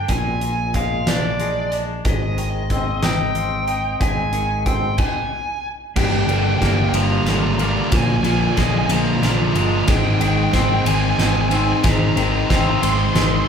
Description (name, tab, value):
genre	post-rock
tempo	61 BPM (dotted quarters)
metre	6/8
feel	straight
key	Ab lydian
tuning	A4 = 439 Hz
part	bluesy overdriven lead guitar	melody	0.0-13.5 s	D5 to C6	-24 LUFS	equal	distortion
part	twangy electric guitar	arpeggios	0.0-13.5 s	G2 to Eb4	-25 LUFS	left 2 dB	tremolo, analog delay
part	growling fingered electric bass	bass	0.0-13.4 s	G1 to Bb1	-23 LUFS	equal	overdrive
part	huge arena drum kit	drums	0.1-13.3 s	crash cymbal, hi-hat, kick drum, ride cymbal, snare drum	-22 LUFS	equal	none
part	sludgy distorted guitar	riff	6.0-13.5 s	G2 to Eb4	-20 LUFS	equal	overdrive
room	moderate large studio reverb, RT60 1.3 s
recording	band playing live in one room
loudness	-16 LUFS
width	side -7 dB against mid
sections	0.0-6.0 A section; 6.0-13.5 B section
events	stop 5.0-6.0; build-up 6.0-13.5; drum fill 6.0-13.5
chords	0.1 Bb7; 2.0 Abmaj7; 6.0 Gm7; 9.9 Abmaj7